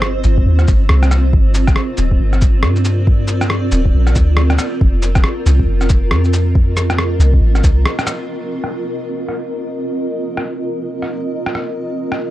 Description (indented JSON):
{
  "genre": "future garage",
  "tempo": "138 BPM",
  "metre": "4/4",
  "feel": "swing 60% on 16ths",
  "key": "C minor",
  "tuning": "A4 = 440 Hz",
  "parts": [
    { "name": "granular cloud pad", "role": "sustained chords", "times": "0.0-12.3 s", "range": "C4 to Eb5", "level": "-21 LUFS", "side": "right 1 dB", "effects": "built-in reverb, vintage 12-bit sampler grit, sidechain pumping" },
    { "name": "soft 808-style bass", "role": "bass", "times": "0.0-7.9 s", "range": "D1 to G2", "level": "-13 LUFS", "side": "equal", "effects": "sidechain pumping" },
    { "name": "electronic rim click, shaker and cabasa", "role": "drums", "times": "0.0-12.2 s", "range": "none", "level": "-21 LUFS", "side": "equal", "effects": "low-pass filter on perc, low-pass filter on snare, low-pass filter on room" },
    { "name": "electronic kick drum", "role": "drums", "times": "0.4-7.7 s", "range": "none", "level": "-14 LUFS", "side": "equal", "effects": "none" }
  ],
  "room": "little or no reverb",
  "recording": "dark, warm production",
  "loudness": "-13 LUFS",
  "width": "side -15 dB against mid",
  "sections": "0.0-8.3 A section; 8.3-12.3 B section",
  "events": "break 7.9-8.3; band accent 7.9; filter sweep on drum 8.3-12.3",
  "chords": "0.0 Cm; 1.3 Gm; 4.8 F7(no3); 8.3 Cm7",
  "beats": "0.03 0.46 0.90 | 1.33 1.77 2.20 2.64 | 3.07 3.51 3.94 4.38 | 4.81 5.25 5.68 6.12 | 6.55 6.98 7.42 7.85 | 8.29 8.72 9.16 9.59 | 10.03 10.46 10.90 11.33 | 11.77 12.20"
}